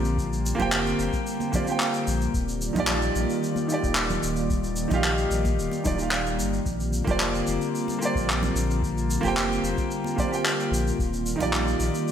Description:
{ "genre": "sunset chillout", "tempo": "111 BPM", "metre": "4/4", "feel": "straight", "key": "Bb major", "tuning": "A4 = 441 Hz", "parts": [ { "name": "clear grand piano", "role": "accompaniment", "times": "0.0-12.1 s", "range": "Eb3 to G5", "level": "-28 LUFS", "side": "moving between left 3 dB and right 4 dB", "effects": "auto-pan, digital delay" }, { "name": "airy breathy pad", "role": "sustained chords", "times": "0.0-12.1 s", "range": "D3 to D5", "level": "-29 LUFS", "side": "left 1 dB", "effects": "chorus" }, { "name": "warm sub bass", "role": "bass", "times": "0.0-11.9 s", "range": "Eb1 to Bb1", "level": "-29 LUFS", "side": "left 1 dB", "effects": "none" }, { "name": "shaker and handclaps", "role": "drums", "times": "0.0-12.1 s", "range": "none", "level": "-30 LUFS", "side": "left 1 dB", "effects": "none" }, { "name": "electronic kick drum", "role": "drums", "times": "0.2-11.5 s", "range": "none", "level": "-30 LUFS", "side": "left 1 dB", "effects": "overdrive" }, { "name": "congas", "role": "percussion", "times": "0.6-11.5 s", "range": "none", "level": "-34 LUFS", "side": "right 3 dB", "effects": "none" } ], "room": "moderate lush hall reverb, RT60 1.6 s, small room ambience", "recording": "bright 1980s-style digital production", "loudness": "-23 LUFS", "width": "side -9 dB against mid", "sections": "0.0-12.1 A section", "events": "none", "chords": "0.0 Bb69; 2.3 Ebmaj9; 6.7 Bb69; 11.0 Ebmaj9" }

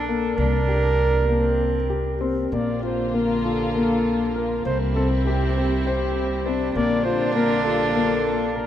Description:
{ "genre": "contemporary instrumental, chamber music in an uneven meter", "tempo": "199 BPM (eighths)", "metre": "7/8", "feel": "straight", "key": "unclear", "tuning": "A4 = 440 Hz", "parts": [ { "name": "mellow flugelhorn", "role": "melody", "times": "0.0-8.7 s", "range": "G4 to D5", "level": "-26 LUFS", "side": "right 1 dB", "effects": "none" }, { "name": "dark cello", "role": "second line", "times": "0.0-8.7 s", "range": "Bb3 to D4", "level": "-28 LUFS", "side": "right 3 dB", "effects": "none" }, { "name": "upright bass", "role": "bass", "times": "0.0-8.7 s", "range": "Bb1 to C2", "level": "-26 LUFS", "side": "equal", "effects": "none" }, { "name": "dark concert grand piano", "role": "arpeggios", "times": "0.1-8.7 s", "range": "Bb3 to C5", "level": "-24 LUFS", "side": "left 4 dB", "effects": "none" }, { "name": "rich chamber string section", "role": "sustained chords", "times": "2.5-8.7 s", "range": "C3 to F4", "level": "-29 LUFS", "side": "equal", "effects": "none" } ], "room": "wet cathedral reverb, RT60 6.8 s", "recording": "in a vast, echoing space", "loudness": "-19 LUFS", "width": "side -11 dB against mid", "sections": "0.0-2.5 A section; 2.5-8.7 B section", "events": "none", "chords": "0.4 C5; 2.5 Bb; 4.6 C; 6.7 Bb" }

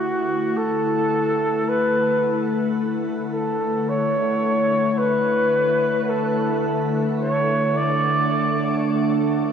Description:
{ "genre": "ambient", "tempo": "54 BPM", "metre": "4/4", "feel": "straight", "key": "D major", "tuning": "A4 = 443 Hz", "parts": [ { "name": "warm flugelhorn", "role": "melody", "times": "0.0-9.5 s", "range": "F#4 to D5", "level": "-21 LUFS", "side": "equal", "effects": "shimmer reverb, ping-pong delay" }, { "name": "warbly tape-like pad", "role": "sustained chords", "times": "0.0-9.5 s", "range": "D3 to F#5", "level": "-24 LUFS", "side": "left 1 dB", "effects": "chorus, built-in reverb, shimmer reverb" }, { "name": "organ-like drone", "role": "drone", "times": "3.1-9.5 s", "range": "D3 to A3", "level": "-27 LUFS", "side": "right 1 dB", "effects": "ensemble chorus, built-in reverb" } ], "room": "wet huge ambient reverb, RT60 7.6 s", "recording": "worn, warbling old tape, cassette tape, warbly pitch drift", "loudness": "-19 LUFS", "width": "side -8 dB against mid", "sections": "0.0-9.5 A section", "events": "none", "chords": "0.0 D6" }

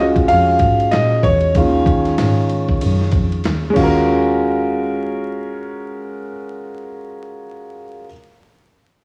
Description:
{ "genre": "hip hop, jazz-hop", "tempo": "95 BPM", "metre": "4/4", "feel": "swing 59% on 16ths", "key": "Eb minor", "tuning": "A4 = 440 Hz", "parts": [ { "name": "warm concert grand piano", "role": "accompaniment", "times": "0.0-8.1 s", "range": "Eb3 to F5", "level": "-19 LUFS", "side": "equal", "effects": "cassette tape" }, { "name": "dark double bass", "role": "bass", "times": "0.0-7.4 s", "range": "Db2 to Bb2", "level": "-22 LUFS", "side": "equal", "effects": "none" }, { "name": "dusty soul sampler-style drum kit", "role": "drums", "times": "0.2-3.9 s", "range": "crash cymbal, hi-hat, kick drum, ride cymbal, snare drum", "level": "-23 LUFS", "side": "equal", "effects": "cassette tape" } ], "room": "light reverb, digital ambience", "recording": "home recording on cassette, vinyl crackle, studio ambience", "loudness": "-16 LUFS", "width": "mono", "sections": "0.0-4.1 A section; 4.1-6.6 B section", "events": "grand piano solo 0.0-4.1", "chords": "0.0 Ebm11" }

